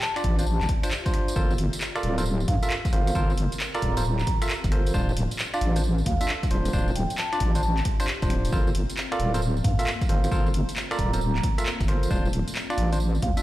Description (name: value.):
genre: UK garage, two-step garage.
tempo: 134 BPM.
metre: 4/4.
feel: swing 66% on 16ths.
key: G dorian.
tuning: A4 = 442 Hz.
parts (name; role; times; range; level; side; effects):
vibraphone with soft mallets; melody; 0.0-13.4 s; F5 to Bb5; -32 LUFS; right 2 dB; digital delay.
ethereal airy pad; sustained chords; 0.0-13.4 s; A3 to E5; -39 LUFS; left 2 dB; ensemble chorus, built-in reverb, sidechain pumping.
punchy analog drum machine; drums; 0.0-13.4 s; finger snaps, handclaps, hi-hat, tambourine; -32 LUFS; equal; none.
barky tine electric piano; stabs; 0.2-13.4 s; D4 to E5; -31 LUFS; right 1 dB; digital delay.
deep soft wobble bass; bass; 0.2-13.3 s; D1 to G2; -24 LUFS; equal; chorus, sidechain pumping.
electronic kick drum; drums; 0.2-13.3 s; none; -26 LUFS; equal; none.
room: digital ambience.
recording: played on a big sound system in a bare room, stone room reverb.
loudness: -22 LUFS.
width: side -15 dB against mid.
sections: 0.0-13.4 A section.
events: none.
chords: 0.0 Dm7; 1.4 Gm11; 4.9 Dm7; 8.5 Gm11; 12.1 Dm7.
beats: 0.02 0.46 0.91 | 1.36 1.81 2.26 2.70 | 3.15 3.60 4.05 4.49 | 4.94 5.39 5.84 6.29 | 6.73 7.18 7.63 8.08 | 8.52 8.97 9.42 9.87 | 10.31 10.76 11.21 11.66 | 12.11 12.55 13.00.